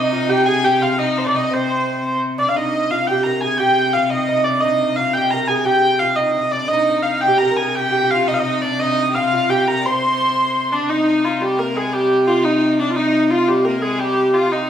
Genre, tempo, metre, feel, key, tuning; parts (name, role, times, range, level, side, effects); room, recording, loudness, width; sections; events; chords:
medieval dance; 115 BPM (dotted quarters); 6/8; straight; C minor; A4 = 438 Hz
warm hurdy-gurdy; melody; 0.0-14.7 s; D4 to C6; -17 LUFS; equal
lute; second line; 0.0-10.7 s; C4 to C5; -22 LUFS; right 4 dB
rich fiddle; second line; 0.0-2.2, 6.7-14.7 s; G3 to D5; -26 LUFS; left 3 dB
rich viola da gamba; drone; 0.0-14.7 s; C3; -24 LUFS; left 3 dB
wet stone room reverb, RT60 1.3 s; band playing live in one room; -15 LUFS; side -9 dB against mid
0.0-2.6 A section; 2.6-10.9 B section; 10.9-14.7 B section